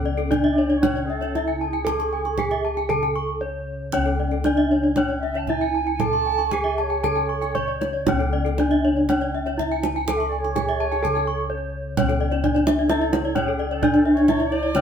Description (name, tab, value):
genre	Balinese gamelan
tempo	116-130 BPM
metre	4/4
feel	straight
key	C# pelog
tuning	A4 = 440 Hz
part	gamelan-type bronze metallophone	melody	0.0-14.8 s	C#4 to C#5	-22 LUFS	right 1 dB	none
part	gamelan-type bronze metallophone	arpeggios	0.0-14.7 s	A4-20c to C#6	-32 LUFS	right 4 dB	none
part	gamelan-type bossed gongs	bass	0.0-14.8 s	C#2 to A4-20c	-28 LUFS	left 2 dB	none
part	gamelan-type bronze metallophone	arpeggios	0.1-14.8 s	C#5 to C#6	-27 LUFS	left 4 dB	none
part	kendang	percussion	0.2-14.8 s	none	-28 LUFS	right 5 dB	none
part	bright bansuri	second line	0.5-14.8 s	G#4-26c to A5	-30 LUFS	right 6 dB	none
room	moderate stone room reverb, RT60 1.2 s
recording	band playing live in one room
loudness	-19 LUFS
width	side -8 dB against mid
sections	0.0-12.0 A section; 12.0-14.8 B section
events	break 3.2-3.9, 11.3-12.0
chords	none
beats	0.31 0.83 1.34 | 1.86 2.38 2.90 3.41 | 3.93 4.45 4.97 5.48 | 6.00 6.52 7.04 7.55 | 8.07 8.58 9.09 9.59 | 10.08 10.56 11.04 11.51 | 11.98 12.44 12.90 13.36 | 13.82 14.29 14.75